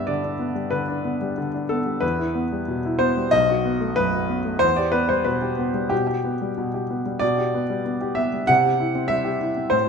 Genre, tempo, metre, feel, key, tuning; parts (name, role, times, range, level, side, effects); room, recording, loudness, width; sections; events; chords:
classical, romantic character piece for solo piano; 93 BPM; 4/4; rubato; A4 = 440 Hz
clear grand piano; solo; 0.0-9.9 s; B1 to F#5; -20 LUFS; equal
wet stone room reverb, RT60 1.1 s; -20 LUFS; side -6 dB against mid
0.0-9.9 A section
0.0 G; 2.0 Em; 3.3 B7; 4.6 Em; 7.2 G/B; 8.5 C